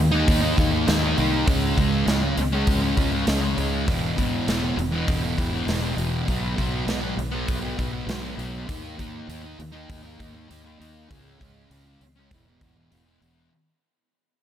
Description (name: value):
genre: rock, shoegaze and dream pop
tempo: 100 BPM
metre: 4/4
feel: straight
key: E lydian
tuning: A4 = 439 Hz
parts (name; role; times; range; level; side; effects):
- fingered electric bass; bass; 0.0-13.5 s; E1 to D#2; -28 LUFS; equal; none
- thick fuzz guitar; riff; 0.1-13.5 s; E2 to D#4; -24 LUFS; equal; distortion, wide subtle chorus
- big rock drum kit; drums; 0.3-13.4 s; hi-hat, kick drum, snare drum; -26 LUFS; equal; none
room: small room reverb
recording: none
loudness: -21 LUFS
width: side -10 dB against mid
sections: 0.0-13.5 A section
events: fade-out 0.0-13.5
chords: 0.0 D#5; 1.5 C#5; 3.9 E5; 6.3 B5; 8.7 D#5; 11.1 C#5; 12.3 E5